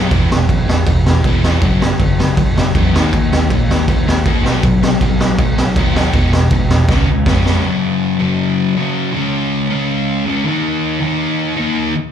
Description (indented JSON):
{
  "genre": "punk rock",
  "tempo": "160 BPM",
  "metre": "4/4",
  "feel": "straight",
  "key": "F# major from 7.6 s",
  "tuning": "A4 = 441 Hz",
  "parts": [
    { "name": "sludgy distorted guitar", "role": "riff", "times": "0.0-12.0 s", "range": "E2 to D#4", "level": "-16 LUFS", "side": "left 1 dB", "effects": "overdrive, slapback echo" },
    { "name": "overdriven picked electric bass", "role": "bass", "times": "0.0-7.6 s", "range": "E1 to A#2", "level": "-17 LUFS", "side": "equal", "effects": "none" },
    { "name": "raw garage drum kit", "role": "drums", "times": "0.1-7.5 s", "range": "crash cymbal, kick drum, snare drum", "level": "-15 LUFS", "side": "equal", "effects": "none" }
  ],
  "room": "small room ambience",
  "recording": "live gig heard through the venue's PA, club reverb",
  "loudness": "-12 LUFS",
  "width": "side -9 dB against mid",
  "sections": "0.0-7.6 A section; 7.6-12.1 B section",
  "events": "drum fill 6.9-7.6",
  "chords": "0.1 E5; 1.6 F#5; 2.9 D#5; 4.4 B; 6.1 E5; 6.9 C#; 7.6 F#5; 9.1 C#5; 10.5 D#5",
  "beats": "| 0.12 0.49 0.87 1.25 | 1.62 2.00 2.38 2.75 | 3.13 3.50 3.88 4.26 | 4.63 5.01 5.38 5.76 | 6.13 6.51 6.89 7.26 | 7.64 8.01 8.39 8.76 | 9.14 9.52 9.89 10.27 | 10.64 11.02 11.39 11.77"
}